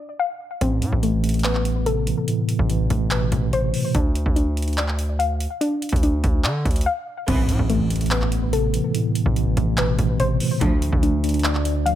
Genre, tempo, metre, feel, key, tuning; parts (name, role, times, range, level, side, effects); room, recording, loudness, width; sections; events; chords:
hip hop, trap; 144 BPM; 4/4; half-time; A minor; A4 = 442 Hz
soft round pluck; arpeggios; 0.0-12.0 s; A3 to F5; -25 LUFS; left 3 dB; chorus, low-pass filter, digital delay
mellow tine electric piano; accompaniment; 0.6-4.0, 7.3-12.0 s; A2 to D5; -23 LUFS; right 1 dB; medium stereo tremolo, low-pass filter
distorted 808-style bass; bass; 0.6-12.0 s; A1 to D3; -24 LUFS; equal; distortion
booming analog drum machine; drums; 0.6-12.0 s; crash cymbal, handclaps, hi-hat, kick drum; -24 LUFS; equal
dark chamber string section; stabs; 7.3-7.6, 10.6-10.9 s; C2 to B3; -30 LUFS; right 2 dB
impact; sound effects; 7.3-8.9 s; -30 LUFS; equal
light reverb; -19 LUFS; side -12 dB against mid
0.0-7.3 A section; 7.3-12.0 B section
break 0.0-0.6, 6.9-7.3; impact 7.3-8.9
0.0 Dm; 0.6 Amadd9; 3.9 Dm; 7.3 Amadd9; 10.6 Dm